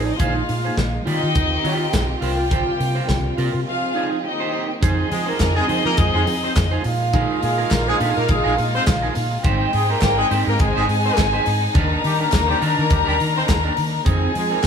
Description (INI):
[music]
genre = disco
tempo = 104 BPM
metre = 4/4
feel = swing 56% on 16ths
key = F dorian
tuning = A4 = 441 Hz
[part]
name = warm chamber string section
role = second line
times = 0.0-14.7 s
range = D4 to Bb5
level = -23 LUFS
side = left 2 dB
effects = none
[part]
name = electric guitar at the edge of break-up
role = accompaniment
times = 0.0-14.7 s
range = C4 to D5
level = -26 LUFS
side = right 4 dB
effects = none
[part]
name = clear symphonic string section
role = sustained chords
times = 0.0-14.7 s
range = C3 to Ab4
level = -27 LUFS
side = right 1 dB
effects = none
[part]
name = vintage muted fingered electric bass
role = bass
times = 0.0-14.7 s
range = Ab1 to F3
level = -23 LUFS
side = equal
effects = none
[part]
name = modern studio drum kit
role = drums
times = 0.2-14.7 s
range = hi-hat, kick drum, snare drum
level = -23 LUFS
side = equal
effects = none
[part]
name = warm horn section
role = stabs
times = 5.1-14.7 s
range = G3 to C5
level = -24 LUFS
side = equal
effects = none
[part]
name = group handclap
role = percussion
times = 5.4-14.7 s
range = none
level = -36 LUFS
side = left 3 dB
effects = none
[sound]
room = wet stone room reverb, RT60 1.4 s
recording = band playing live in one room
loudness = -17 LUFS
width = side -7 dB against mid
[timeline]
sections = 0.0-4.8 A section; 4.8-14.7 B section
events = break 3.7-4.8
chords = 0.2 Bb9sus4; 1.1 Eb69; 2.2 C7sus4; 3.7 Fm7; 4.2 Eb6; 4.8 Fm7; 6.8 Bb7sus4; 9.4 Abmaj7; 11.8 Ebmaj7; 14.1 Fm7